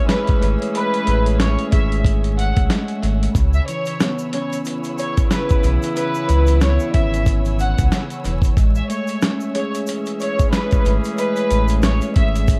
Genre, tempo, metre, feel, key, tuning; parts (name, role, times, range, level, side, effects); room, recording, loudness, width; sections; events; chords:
hip hop, boom-bap hip-hop; 92 BPM; 4/4; swing 58% on 16ths; A4 = 440 Hz
warm studio violin section; melody; 0.0-12.5 s; B4 to F#5; -27 LUFS; equal; high-pass filter, low-pass filter, tape echo
mellow tine electric piano; accompaniment; 0.0-12.6 s; C#3 to G#4; -28 LUFS; equal; high-pass filter, low-pass filter
rich studio string section; sustained chords; 0.0-12.6 s; C#5 to E6; -38 LUFS; equal; high-pass filter, low-pass filter
warm horn section; stabs; 0.0-12.6 s; C#3 to G#4; -30 LUFS; equal; high-pass filter, low-pass filter, tape echo
dusty soul sampler-style drum kit; drums; 0.1-12.6 s; hi-hat, kick drum, snare drum; -21 LUFS; equal
sub bass with octave; bass; 0.4-12.6 s; E1 to C#2; -20 LUFS; equal
tube shaker; percussion; 3.4-12.6 s; -44 LUFS; equal; tape echo
small room ambience; echo-heavy mix, vinyl crackle; -19 LUFS; mono
0.0-12.6 A section
0.0 Amaj7; 3.4 C#m7; 8.6 Amaj7